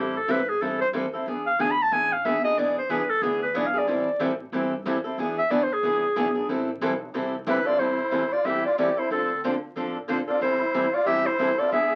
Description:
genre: acoustic string swing (jazz manouche)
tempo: 184 BPM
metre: 4/4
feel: swing 59% on 8ths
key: A minor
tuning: A4 = 440 Hz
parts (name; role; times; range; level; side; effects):
- bright clarinet; melody; 0.0-12.0 s; G4 to B5; -26 LUFS; equal; none
- picked steel-string acoustic guitar; accompaniment; 0.0-11.9 s; D3 to A4; -30 LUFS; equal; none
- upright bass; bass; 0.0-12.0 s; E1 to A2; -47 LUFS; equal; none
- picked steel-string acoustic guitar; accompaniment; 2.6-11.9 s; D3 to B4; -38 LUFS; equal; none
- musette accordion; second line; 7.5-12.0 s; C4 to G#4; -33 LUFS; equal; none
room: moderate club reverb, RT60 0.5 s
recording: very old 78 rpm record, vinyl crackle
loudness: -25 LUFS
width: mono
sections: 0.0-7.8 A section; 7.8-12.0 B section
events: clarinet solo 0.0-7.8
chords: 0.0 Am7; 1.3 E7; 3.9 Am7; 5.2 E7; 6.5 Am7; 9.1 Dm7; 10.4 Am7

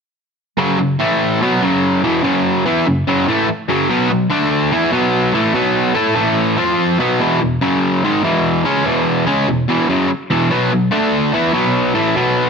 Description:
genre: rock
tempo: 145 BPM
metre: 4/4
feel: straight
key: unclear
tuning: A4 = 440 Hz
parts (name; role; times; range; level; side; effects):
- overdriven semi-hollow guitar; solo; 0.6-12.5 s; E2 to A4; -13 LUFS; equal; none
room: moderate studio reverb, RT60 0.9 s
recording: dense, heavily limited modern master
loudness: -13 LUFS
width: side -5 dB against mid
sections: 0.6-12.5 A section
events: none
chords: 0.6 F#5; 1.0 A5; 1.4 F#5; 3.9 B5; 4.3 D5; 4.7 B5; 6.2 A5; 6.6 F5; 7.0 B5; 7.2 E5; 7.6 F#5; 8.0 E5; 10.5 B5; 10.9 D5; 11.3 B5

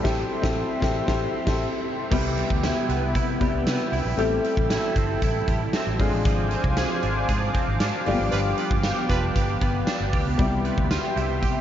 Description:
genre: 1980s-style pop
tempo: 116 BPM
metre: 4/4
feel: straight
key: C major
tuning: A4 = 440 Hz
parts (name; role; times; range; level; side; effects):
- warm concert grand piano; accompaniment; 0.0-11.6 s; C3 to B4; -28 LUFS; left 4 dB; wide subtle chorus
- warm analog pad; sustained chords; 0.0-11.6 s; B3 to D6; -29 LUFS; equal; chorus
- twelve-string electric guitar; riff; 0.0-11.6 s; F3 to A4; -31 LUFS; right 6 dB; ensemble chorus, diffuse ambient delay
- huge arena drum kit; drums; 0.0-11.5 s; crash cymbal, hi-hat, kick drum, snare drum, tambourine; -26 LUFS; equal; none
- vintage muted fingered electric bass; bass; 0.1-11.6 s; F1 to C3; -28 LUFS; equal; none
- warm horn section; stabs; 8.3-9.3 s; F4 to B4; -35 LUFS; right 4 dB; none
room: moderate huge ambient reverb, RT60 8.2 s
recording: dreamy mix soaked in reverb, nothing above 7.5 kHz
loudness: -21 LUFS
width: side -10 dB against mid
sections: 0.0-2.1 A section; 2.1-11.6 B section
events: band accent 0.0-2.1, 8.3-10.4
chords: 0.0 Am7; 2.1 Cmaj7; 4.2 Am7; 6.0 Fm6/Ab; 8.1 G7; 10.4 Cmaj7

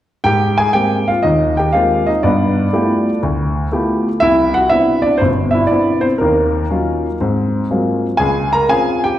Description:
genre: solo jazz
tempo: 121 BPM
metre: 4/4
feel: swing 69% on 8ths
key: unclear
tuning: A4 = 441 Hz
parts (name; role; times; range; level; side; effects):
- warm baby grand piano; solo; 0.2-9.2 s; G1 to Bb5; -13 LUFS; equal; none
room: wet recital hall reverb, RT60 1.8 s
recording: recorded in a church or concert hall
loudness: -13 LUFS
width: side -12 dB against mid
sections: 0.2-9.2 A section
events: none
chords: 0.2 Abmaj9; 2.2 G13; 4.2 Cmaj9; 6.2 Ebm9; 7.2 Ab13; 8.2 Dbmaj7

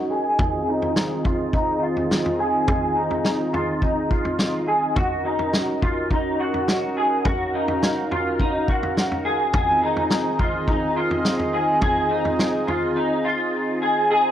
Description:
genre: dream pop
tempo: 105 BPM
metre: 4/4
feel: straight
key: unclear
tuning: A4 = 442 Hz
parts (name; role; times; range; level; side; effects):
- warm analog pad; sustained chords; 0.0-14.3 s; Eb3 to Bb5; -25 LUFS; right 1 dB; chorus, low-pass filter
- electric guitar through a small old amp; arpeggios; 0.0-14.3 s; Eb4 to Ab4; -22 LUFS; equal; ensemble chorus, low-pass filter, tape echo
- vintage drum kit; drums; 0.4-12.8 s; kick drum, snare drum, toms; -25 LUFS; equal; none
room: light reverb, small room ambience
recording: dry, gritty hardware recording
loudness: -19 LUFS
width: side -10 dB against mid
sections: 0.0-14.1 A section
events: filter sweep 0.0-14.1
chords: 0.4 Fm7/Eb; 5.0 Ebm7; 9.5 Fm7/Eb

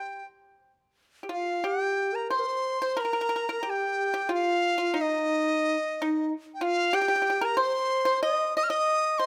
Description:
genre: chinese traditional, Chinese chamber ensemble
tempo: 91 BPM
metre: 4/4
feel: rubato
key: G jue mode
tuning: A4 = 441 Hz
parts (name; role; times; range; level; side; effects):
- dizi; melody; 0.0-9.3 s; Eb5 to F6; -30 LUFS; equal; none
- pipa; second line; 0.0-9.3 s; Eb4 to Eb5; -33 LUFS; equal; none
- bright xiao; second line; 1.2-9.3 s; Eb4 to Eb5; -32 LUFS; equal; none
room: light reverb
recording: close, detailed microphones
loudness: -27 LUFS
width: mono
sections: 0.0-1.6 A section; 1.6-9.3 B section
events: none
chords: none

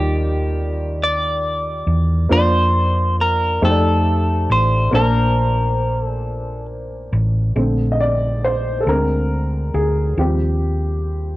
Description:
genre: slow gospel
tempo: 46 BPM (dotted quarters)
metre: 6/8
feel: straight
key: Bb major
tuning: A4 = 438 Hz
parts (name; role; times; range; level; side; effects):
- clean electric guitar; melody; 0.0-6.7 s; G4 to D5; -20 LUFS; equal; wide subtle chorus
- warm upright piano; accompaniment; 0.0-11.4 s; Bb2 to A5; -22 LUFS; equal; cassette tape
- hollow-body short-scale fingered electric bass; bass; 0.0-11.4 s; A1 to F2; -19 LUFS; equal; none
room: light reverb, small room ambience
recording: home recording on cassette, nothing above 10.3 kHz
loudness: -16 LUFS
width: side -17 dB against mid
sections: 0.0-7.6 A section; 7.6-11.4 B section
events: upright piano solo 7.6-11.4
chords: 0.0 Ebmaj9; 2.3 Bb/F; 3.6 F13; 4.9 Bbmaj9; 7.6 Bbmaj7; 8.9 Bb7/D; 10.2 Eb6

